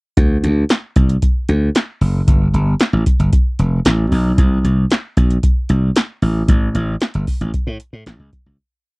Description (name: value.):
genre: early-eighties boogie funk.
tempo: 114 BPM.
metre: 4/4.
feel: straight.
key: unclear.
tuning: A4 = 437 Hz.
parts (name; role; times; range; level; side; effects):
slap bass; bass; 0.2-8.6 s; F1 to A2; -15 LUFS; equal; none.
electro analog drum machine; drums; 0.2-8.4 s; handclaps, hi-hat, kick drum, snare drum; -15 LUFS; equal; none.
room: little or no reverb.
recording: dry, close 1970s-style studio recording.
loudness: -14 LUFS.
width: side -29 dB against mid.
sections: 0.2-8.6 verse.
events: fade-out 6.5-8.6.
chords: none.